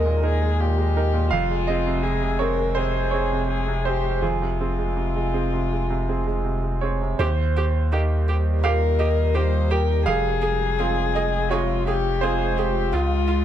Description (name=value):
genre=neoclassical piano and strings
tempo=83 BPM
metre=4/4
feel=rubato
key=F minor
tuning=A4 = 440 Hz
part: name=dark violin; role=melody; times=0.0-13.4 s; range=F4 to C5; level=-26 LUFS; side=left 8 dB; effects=none
part: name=bright concert grand piano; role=accompaniment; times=0.0-13.4 s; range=Db2 to Ab5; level=-25 LUFS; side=right 6 dB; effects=none
part: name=punchy sub bass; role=bass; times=0.0-13.4 s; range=F1 to Eb2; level=-23 LUFS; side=equal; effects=none
part: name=warm viola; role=accompaniment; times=7.2-13.4 s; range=F4 to Ab4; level=-31 LUFS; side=right 4 dB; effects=none
part: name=deep dark ambient pad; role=sustained chords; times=8.2-13.4 s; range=G3 to Db5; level=-32 LUFS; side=right 3 dB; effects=chorus, built-in reverb
room=light reverb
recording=close, detailed microphones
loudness=-20 LUFS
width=side -10 dB against mid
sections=0.0-7.2 A section; 7.2-13.4 A section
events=none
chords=0.0 Absus2/Eb; 1.3 Fm; 7.2 Eb6; 10.1 Fm; 12.9 Db